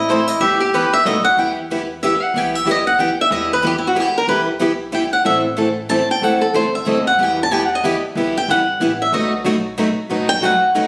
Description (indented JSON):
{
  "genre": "acoustic string swing (jazz manouche)",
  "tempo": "186 BPM",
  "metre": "3/4",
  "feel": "swing 59% on 8ths",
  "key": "E harmonic minor",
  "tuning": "A4 = 440 Hz",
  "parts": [
    { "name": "picked swing-style acoustic guitar", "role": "melody", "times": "0.0-10.9 s", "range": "E4 to A5", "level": "-19 LUFS", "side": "equal", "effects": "none" },
    { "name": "melodica", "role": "second line", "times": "0.0-1.4 s", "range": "E4 to G4", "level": "-22 LUFS", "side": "equal", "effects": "none" },
    { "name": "upright bass", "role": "bass", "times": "0.0-10.9 s", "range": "E1 to E2", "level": "-35 LUFS", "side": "equal", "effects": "none" },
    { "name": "picked plugged-in steel-string acoustic guitar", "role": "accompaniment", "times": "0.1-10.9 s", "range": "B2 to A4", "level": "-24 LUFS", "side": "equal", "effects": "none" },
    { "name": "picked steel-string acoustic guitar", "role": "accompaniment", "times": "0.1-10.9 s", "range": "B2 to B4", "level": "-26 LUFS", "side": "equal", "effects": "none" }
  ],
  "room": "moderate club reverb, RT60 0.6 s",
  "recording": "recorded on a phone in the room, studio reverb, compression",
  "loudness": "-17 LUFS",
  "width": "mono",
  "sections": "0.0-1.4 A section; 1.4-10.9 A section",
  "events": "steel-string acoustic guitar solo 0.0-10.9",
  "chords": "0.4 Em; 1.1 B7; 1.4 Em; 5.2 Am; 7.2 Em; 9.1 B7",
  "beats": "0.09 | 0.41 0.73 1.05 | 1.38 1.70 2.02 | 2.35 2.67 2.99 | 3.31 3.64 3.96 | 4.28 4.61 4.93 | 5.25 5.57 5.90 | 6.22 6.54 6.87 | 7.19 7.51 7.83 | 8.16 8.48 8.80 | 9.13 9.45 9.77 | 10.10 10.42 10.74"
}